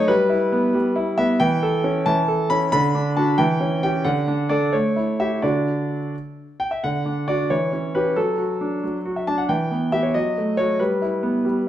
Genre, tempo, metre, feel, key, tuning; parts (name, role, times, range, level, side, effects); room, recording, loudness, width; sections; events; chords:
classical-period piano sonatina; 91 BPM (dotted quarters); 6/8; rubato; D major; A4 = 435 Hz
clear concert grand piano; solo; 0.0-11.7 s; D3 to B5; -19 LUFS; equal
moderate recital hall reverb, RT60 1.3 s; minimal, uncompressed stereo recording; -19 LUFS; side -12 dB against mid
0.0-6.8 A section; 6.8-11.7 A section
0.1 Em/G; 1.4 A7/E; 2.7 D; 3.4 C#dim/E; 4.1 D; 4.7 A7; 5.4 D; 7.5 C#dim/E; 8.2 D/F#; 9.5 Em; 10.1 D#dim/F#; 10.8 Em/G